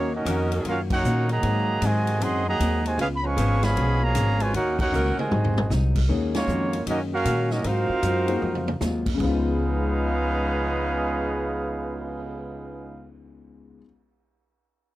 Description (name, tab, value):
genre	jazz, big band swing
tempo	154 BPM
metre	4/4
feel	swing 64% on 8ths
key	Db mixolydian from 6.1 s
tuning	A4 = 441 Hz
part	warm trumpet section	melody	0.0-13.1 s	Bb3 to Db6	-27 LUFS	right 1 dB	none
part	clear trombone section	second line	0.0-13.1 s	Cb3 to Gb4	-30 LUFS	right 2 dB	none
part	vintage hollow-body jazz guitar	accompaniment	0.0-13.9 s	Ab2 to Gb4	-33 LUFS	left 4 dB	none
part	upright bass	bass	0.0-13.8 s	Ab1 to Bb2	-26 LUFS	equal	none
part	bright saxophone section	sustained chords	0.3-5.3 s	F3 to Bb4	-33 LUFS	left 1 dB	none
part	swinging big-band drum kit	drums	0.3-12.2 s	crash cymbal, cymbal swell, hi-hat, kick drum, ride cymbal, snare drum, toms	-32 LUFS	equal	none
part	warm concert grand piano	accompaniment	6.1-13.8 s	Db3 to Db5	-31 LUFS	left 5 dB	none
room	little or no reverb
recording	dry, close 1970s-style studio recording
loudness	-21 LUFS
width	side -16 dB against mid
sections	0.0-6.1 A section; 6.1-9.2 B section; 9.2-12.3 C section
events	band accent 0.8, 4.7, 6.3; drum fill 4.9-5.7, 8.4-8.8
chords	0.0 Ebm7; 1.4 Ab7; 3.0 Db7; 4.5 Ebm7; 5.3 Ab7; 6.1 Ebm11; 7.6 Ab13; 9.2 Db9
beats	0.27 0.66 1.04 | 1.43 1.82 2.21 2.60 | 2.99 3.38 3.77 4.15 | 4.54 4.93 5.32 5.71 | 6.10 6.48 6.87 7.26 | 7.65 8.04 8.43 8.81 | 9.20 9.59 9.98 10.37 | 10.76 11.15 11.53 11.92